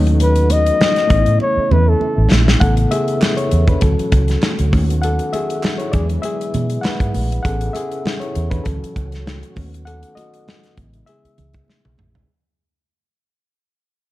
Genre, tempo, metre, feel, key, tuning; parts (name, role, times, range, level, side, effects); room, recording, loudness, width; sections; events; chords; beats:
lush 1970s-style soul; 99 BPM; 4/4; swing 54% on 16ths; A major; A4 = 436 Hz
reed electric piano; accompaniment; 0.0-12.3 s; C#3 to F#5; -22 LUFS; left 2 dB; overdrive, spring reverb
tonewheel organ; sustained chords; 0.0-12.3 s; C#3 to F#4; -30 LUFS; right 2 dB; slow rotary speaker, overdrive, chorus vibrato
vintage muted fingered electric bass; bass; 0.0-12.2 s; A1 to B2; -16 LUFS; equal
modern studio drum kit; drums; 0.1-12.3 s; hi-hat, kick drum, snare drum, toms; -19 LUFS; equal
mellow flugelhorn; melody; 0.2-2.3 s; A4 to D#5; -17 LUFS; left 2 dB
congas; percussion; 0.2-12.1 s; -27 LUFS; right 4 dB
group handclap; percussion; 3.2-7.0 s; -33 LUFS; right 5 dB
light reverb; dark, warm production; -14 LUFS; side -16 dB against mid
0.0-2.6 A section; 2.6-12.3 B section
drum fill 1.4-2.6, 11.7-12.3; fade-out 2.6-12.3; reed electric piano solo 2.6-12.3
0.0 B7/D#; 1.1 A; 2.6 Amaj9; 3.8 Dmaj7; 4.7 B7/D#; 5.9 E7; 7.4 Amaj9; 8.7 Dmaj7; 9.6 B7/D#; 10.8 Amaj7
| 0.20 0.80 1.40 2.01 | 2.61 3.22 3.82 4.42 | 5.03 5.63 6.24 6.84 | 7.45 8.05 8.66 9.26 | 9.87 10.47 11.08 11.69